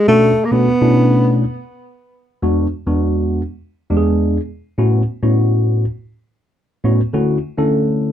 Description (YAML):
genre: funk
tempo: 102 BPM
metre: 4/4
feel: straight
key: unclear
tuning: A4 = 441 Hz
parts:
  - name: breathy alto saxophone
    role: melody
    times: 0.0-1.4 s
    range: A3 to B3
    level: -14 LUFS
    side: equal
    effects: none
  - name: tine electric piano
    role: accompaniment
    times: 0.1-8.1 s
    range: E2 to A4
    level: -14 LUFS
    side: equal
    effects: phaser
room: wet small room ambience, RT60 0.5 s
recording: dark, warm production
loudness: -14 LUFS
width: side -10 dB against mid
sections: 0.0-2.4 A section; 2.4-8.1 B section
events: none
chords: 0.1 Bm7; 2.4 E7; 4.8 A69; 7.1 Dmaj7